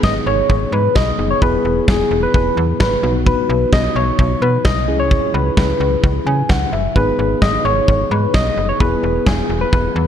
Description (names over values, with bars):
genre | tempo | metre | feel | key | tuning
synth-pop | 130 BPM | 4/4 | straight | G# minor | A4 = 440 Hz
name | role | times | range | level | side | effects
soft struck synth lead | melody | 0.0-10.1 s | G#4 to D#5 | -18 LUFS | left 1 dB | chorus, phaser
mellow tine electric piano | accompaniment | 0.0-10.1 s | B3 to G#5 | -22 LUFS | left 2 dB | fast stereo tremolo
slap-like FM bass | bass | 0.0-10.1 s | E1 to C#3 | -20 LUFS | equal | none
huge arena drum kit | drums | 0.0-9.8 s | kick drum, snare drum | -18 LUFS | equal | gated reverb
room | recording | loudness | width
light reverb, small room ambience | none | -13 LUFS | side -9 dB against mid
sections
0.0-10.1 A section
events
tine electric piano fill 6.0-7.0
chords
0.0 G#m; 1.4 E; 3.0 B; 4.9 C#m7; 7.0 G#m; 8.8 E